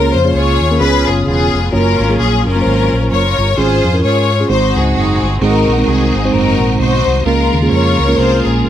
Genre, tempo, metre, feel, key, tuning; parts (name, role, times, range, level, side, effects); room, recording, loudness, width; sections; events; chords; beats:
gospel; 130 BPM; 4/4; swing 58% on 8ths; Db major; A4 = 440 Hz
rich studio string section; melody; 0.0-8.7 s; Cb4 to Db5; -15 LUFS; left 3 dB
mellow tine electric piano; accompaniment; 0.0-8.7 s; Ab2 to Db5; -16 LUFS; right 2 dB; slow stereo tremolo
fingered electric bass; bass; 0.0-8.7 s; Fb1 to Ab2; -15 LUFS; equal
tonewheel organ; sustained chords; 5.4-8.7 s; Eb3 to Ab4; -21 LUFS; right 5 dB; slow rotary speaker, overdrive, chorus vibrato
light reverb, small room ambience; -10 LUFS; side -11 dB against mid
0.0-8.7 A section
0.0 Bbm7/Db; 0.8 Db7; 1.7 Gbmaj7; 3.6 Db/Ab; 4.5 Ab7; 7.3 Db6
0.34 0.80 1.26 | 1.72 2.18 2.64 3.10 | 3.57 4.03 4.49 4.95 | 5.41 5.87 6.33 6.79 | 7.25 7.72 8.18 8.64